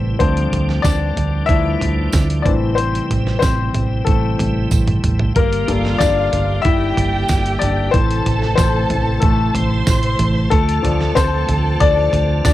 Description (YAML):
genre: piano-driven pop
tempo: 93 BPM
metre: 4/4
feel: straight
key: unclear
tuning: A4 = 439 Hz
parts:
  - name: clear baby grand piano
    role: accompaniment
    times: 0.0-12.5 s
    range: E3 to E5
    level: -20 LUFS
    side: left 6 dB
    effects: cassette tape
  - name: tonewheel organ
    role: sustained chords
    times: 0.0-12.5 s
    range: C3 to G4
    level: -25 LUFS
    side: right 2 dB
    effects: chorus vibrato, slow rotary speaker, cassette tape
  - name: vintage muted fingered electric bass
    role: bass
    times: 0.0-12.5 s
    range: G1 to D2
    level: -19 LUFS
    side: right 1 dB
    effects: none
  - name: dusty soul sampler-style drum kit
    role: drums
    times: 0.2-12.5 s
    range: hi-hat, kick drum, snare drum, toms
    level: -19 LUFS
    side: right 2 dB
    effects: cassette tape
  - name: tambourine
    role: percussion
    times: 0.8-12.5 s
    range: none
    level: -30 LUFS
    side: right 9 dB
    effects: none
  - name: warm studio violin section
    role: second line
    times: 5.4-12.5 s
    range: F4 to C6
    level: -24 LUFS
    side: right 1 dB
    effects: cassette tape
room: light reverb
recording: home recording on cassette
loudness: -14 LUFS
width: side -14 dB against mid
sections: 0.0-12.5 A section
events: grand piano solo 0.0-12.5; drum fill 4.7-5.4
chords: 0.2 Dm; 2.5 Am; 5.4 Gmadd9; 7.9 Am; 10.5 Dm